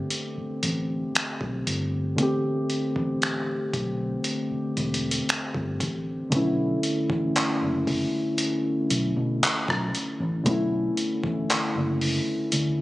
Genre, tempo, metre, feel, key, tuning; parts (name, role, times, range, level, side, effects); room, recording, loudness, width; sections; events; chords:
contemporary R&B; 58 BPM; 4/4; straight; A4 = 440 Hz
muted felt-like synth keys; accompaniment; 0.0-12.8 s; D3 to G4; -26 LUFS; left 1 dB; chorus
dusty soul sampler-style drum kit; drums; 0.1-12.8 s; finger snaps, handclaps, hi-hat, kick drum, rim click; -27 LUFS; equal
vintage muted fingered electric bass; bass; 0.4-12.8 s; E1 to B2; -29 LUFS; equal
light reverb; recorded on a phone in the room, studio ambience, compression; -24 LUFS; side -17 dB against mid
0.0-6.3 A section; 6.3-12.8 B section
0.0 Am11; 6.3 Bm11